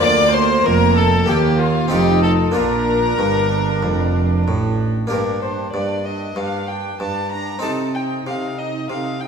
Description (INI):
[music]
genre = classical, baroque-style concerto movement with solo episodes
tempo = 95 BPM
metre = 4/4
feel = straight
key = Bb major, G minor from 5.1 s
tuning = A4 = 444 Hz
[part]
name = warm chamber violin section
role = melody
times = 0.0-9.3 s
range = G4 to D6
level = -27 LUFS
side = left 5 dB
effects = none
[part]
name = warm violin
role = melody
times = 0.0-9.3 s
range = F4 to Bb5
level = -24 LUFS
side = left 2 dB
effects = none
[part]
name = warm chamber violin section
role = second line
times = 0.0-9.3 s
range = F4 to Bb5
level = -24 LUFS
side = left 4 dB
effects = none
[part]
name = harpsichord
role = accompaniment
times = 0.0-9.3 s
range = D2 to A4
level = -23 LUFS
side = left 1 dB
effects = none
[part]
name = warm chamber viola section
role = accompaniment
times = 0.0-9.3 s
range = Bb3 to Eb4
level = -25 LUFS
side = right 3 dB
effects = none
[part]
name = rich chamber cello section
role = bass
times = 0.0-9.3 s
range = D2 to C3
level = -23 LUFS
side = right 3 dB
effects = none
[part]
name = warm studio double bass section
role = bass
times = 0.0-5.1 s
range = F1 to Eb2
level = -23 LUFS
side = right 4 dB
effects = none
[sound]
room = wet recital hall reverb, RT60 1.4 s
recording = none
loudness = -16 LUFS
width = side -6 dB against mid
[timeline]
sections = 0.0-5.1 A section; 5.1-9.3 B section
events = none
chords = 0.0 Bb/D; 1.3 Eb; 1.9 F7; 2.6 Bb; 5.1 Gm; 7.6 Adim/C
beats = | 0.03 0.66 1.29 1.92 | 2.56 3.20 3.84 4.48 | 5.11 5.74 6.37 7.00 | 7.63 8.26 8.89